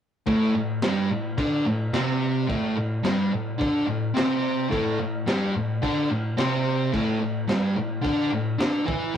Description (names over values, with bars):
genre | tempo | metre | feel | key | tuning
garage rock duo or trio | 108 BPM | 4/4 | straight | unclear | A4 = 440 Hz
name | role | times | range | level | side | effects
fuzz guitar | riff | 0.3-9.2 s | G2 to E4 | -23 LUFS | equal | distortion
crunchy breakbeat drum kit | drums | 0.3-9.0 s | crash cymbal, kick drum, snare drum | -30 LUFS | equal | none
room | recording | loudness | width
moderate studio reverb, RT60 0.6 s | rough rehearsal-room recording | -22 LUFS | side -9 dB against mid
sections
0.3-9.2 A section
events
none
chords
0.3 A5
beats
| 0.27 0.83 1.38 1.94 | 2.49 3.05 3.60 4.16 | 4.71 5.27 5.83 6.38 | 6.94 7.49 8.05 8.60 | 9.16